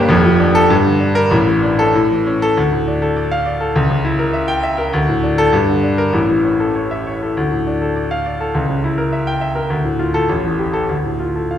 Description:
classical, virtuoso piano study; 94-105 BPM; 2/4; rubato; D minor; A4 = 440 Hz
clear grand piano; solo; 0.0-11.6 s; F1 to G5; -14 LUFS; left 1 dB
wet scoring stage reverb, RT60 1.6 s; heard from further back in the room; -14 LUFS; side -10 dB against mid
0.0-2.6 A section; 2.6-11.6 B section
0.1 Dm/F; 0.7 Gm; 1.3 Asus4; 2.0 A; 2.6 Dm; 3.8 C#dim7; 4.9 D5; 5.5 Gm; 6.1 A; 7.4 Dm; 8.5 C#dim7; 9.7 Dm; 10.3 A5; 10.9 Dm
| 0.10 0.70 | 1.32 1.96 | 2.58 3.17 | 3.76 4.34 | 4.93 5.54 | 6.14 6.76 | 7.38 7.96 | 8.55 9.13 | 9.70 10.29 | 10.89 11.51

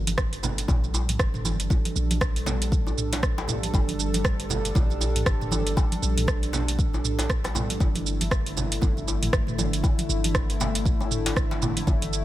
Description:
afro house; 118 BPM; 4/4; swing 59% on 16ths; G dorian; A4 = 441 Hz
warm analog pad; sustained chords; 0.1-12.2 s; D3 to A4; -31 LUFS; equal; chorus, sidechain pumping
warm 808-style bass; bass; 0.0-12.2 s; G1 to Bb1; -29 LUFS; equal; sidechain pumping
afro-pop drum kit; drums; 0.1-12.2 s; hi-hat, rim click, shaker, toms; -29 LUFS; right 2 dB
congas; percussion; 0.1-12.2 s; -34 LUFS; right 3 dB
electronic kick drum; drums; 0.2-12.0 s; -25 LUFS; equal
djembe; percussion; 0.4-12.0 s; -35 LUFS; left 3 dB
digital ambience; -22 LUFS; side -14 dB against mid
0.0-12.2 A section
0.0 Gm; 7.8 D5/G
0.18 0.69 1.20 | 1.70 2.21 2.72 3.23 | 3.74 4.25 4.75 5.26 | 5.77 6.28 6.79 7.30 | 7.80 8.31 8.82 9.33 | 9.84 10.35 10.86 11.36 | 11.87

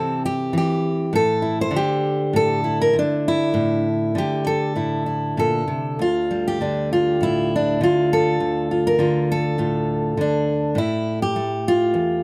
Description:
folk, solo fingerstyle acoustic guitar; 100 BPM; 4/4; rubato; D minor; A4 = 442 Hz
fingerpicked steel-string acoustic guitar; solo; 0.0-12.2 s; D2 to C5; -21 LUFS; equal
little or no reverb; close, detailed microphones; -21 LUFS; mono
0.0-12.2 A section
0.0 C; 1.1 Asus4; 6.0 Dm; 10.8 A5
0.53 | 1.13 1.72 2.33 2.94 | 3.54 4.14 4.75 5.37 | 5.99 6.59 7.20 7.80 | 8.39 8.98 9.57 10.16 | 10.75 11.35 11.94

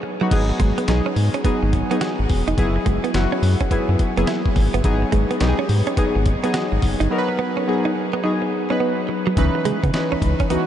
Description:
R&B, new jack swing; 106 BPM; 4/4; swing 64% on 16ths; A4 = 441 Hz
warm analog keys; accompaniment; 0.0-10.7 s; E3 to B4; -21 LUFS; left 1 dB; chorus
direct-recorded clean electric guitar; riff; 0.0-10.6 s; F#3 to F#4; -25 LUFS; right 5 dB; wide subtle chorus
round analog bass; bass; 0.3-10.6 s; E1 to C#3; -20 LUFS; equal
dusty soul sampler-style drum kit; drums; 0.3-10.7 s; crash cymbal, hi-hat, kick drum, snare drum; -24 LUFS; equal
moderate huge ambient reverb, RT60 7.7 s; dreamy mix soaked in reverb, nothing above 10.8 kHz; -17 LUFS; side -10 dB against mid
0.3-9.4 A section; 9.4-10.7 B section
break 0.0-0.3
0.3 G#m7; 2.6 F#9sus4; 4.8 G#m7; 9.4 C#m9
| 0.31 0.88 1.45 2.01 | 2.58 3.14 3.71 4.28 | 4.84 5.41 5.97 6.54 | 7.11 7.67 8.24 8.80 | 9.37 9.94 10.50

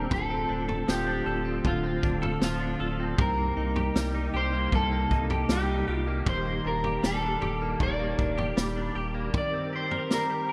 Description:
dream pop; 78 BPM; 4/4; straight; C dorian; A4 = 439 Hz
electric guitar at the edge of break-up; melody; 0.0-10.5 s; F4 to D5; -33 LUFS; equal; analog chorus, delay
mellow tonewheel organ; sustained chords; 0.0-10.5 s; C3 to Bb4; -36 LUFS; equal; chorus vibrato, fast rotary speaker
direct-recorded clean electric guitar; arpeggios; 0.0-10.5 s; C3 to Bb4; -36 LUFS; equal; ensemble chorus, delay
saturated sub bass; bass; 0.0-9.3 s; D1 to C2; -35 LUFS; equal
vintage drum kit; drums; 0.1-10.3 s; kick drum, snare drum, toms; -32 LUFS; equal
moderate lush hall reverb, RT60 2.9 s; bright 1980s-style digital production; -28 LUFS; mono
0.0-10.5 A section
0.1 Dm7; 3.2 Cm7; 6.3 Ebmaj7; 9.3 Cm7/Eb
| 0.11 0.88 1.65 2.42 | 3.19 3.96 4.72 5.49 | 6.26 7.03 7.80 8.57 | 9.34 10.11

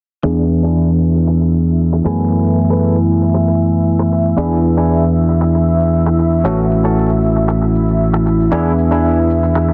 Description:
nu-disco, nu disco; 116 BPM; 4/4; straight; E mixolydian; A4 = 440 Hz
bell-like tine electric piano; accompaniment; 0.2-9.7 s; E3 to G#5; -17 LUFS; equal; dub echo
lush unison pad; sustained chords; 0.2-9.7 s; E4 to E5; -23 LUFS; equal; chorus
direct-recorded clean electric guitar; riff; 0.2-9.7 s; C#4 to B4; -26 LUFS; equal; lush chorus, low-pass filter, dub echo
fingered electric bass; bass; 0.2-9.7 s; A1 to F#2; -19 LUFS; equal
shaker; drums; 0.2-9.7 s; -57 LUFS; equal
light reverb; dense, heavily limited modern master, low-pass filter; -14 LUFS; mono
0.2-9.7 A section
filter sweep on clean electric guitar 0.2-9.7; filter sweep on analog synth pad 0.2-9.7; filter sweep 0.2-9.7
0.2 E7; 2.1 F#m11; 4.4 E7; 6.5 A6; 8.5 E7
| 0.24 0.76 1.28 1.80 | 2.31 2.83 3.35 3.87 | 4.38 4.90 5.42 5.93 | 6.45 6.97 7.49 8.00 | 8.52 9.04 9.55

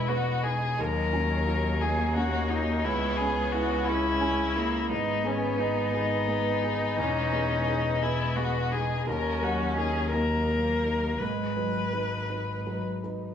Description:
neoclassical piano and strings; 58 BPM (dotted quarters); 6/8; rubato; G# minor; A4 = 440 Hz
rich violin; melody; 0.0-12.8 s; C#4 to B4; -30 LUFS; left 4 dB
rich cello; second line; 0.0-12.3 s; F#3 to C#4; -33 LUFS; right 3 dB
clear upright piano; accompaniment; 0.0-13.3 s; C#2 to D#5; -32 LUFS; right 2 dB
dark chamber string section; sustained chords; 0.0-13.3 s; F#3 to D#5; -40 LUFS; left 2 dB
rich double bass; bass; 0.0-13.3 s; E1 to D#2; -31 LUFS; left 1 dB
moderate recital hall reverb, RT60 1.4 s; small room reverb; -25 LUFS; side -8 dB against mid
0.0-13.3 A section
0.0 Emaj7; 0.8 D#m7; 2.8 C#m7; 4.9 G#m; 7.0 Emaj7; 9.1 D#m7; 11.2 G#m7
| 0.78 1.82 | 2.85 3.88 | 4.90 5.94 | 6.98 8.02 | 9.06 10.13 | 11.20 12.29

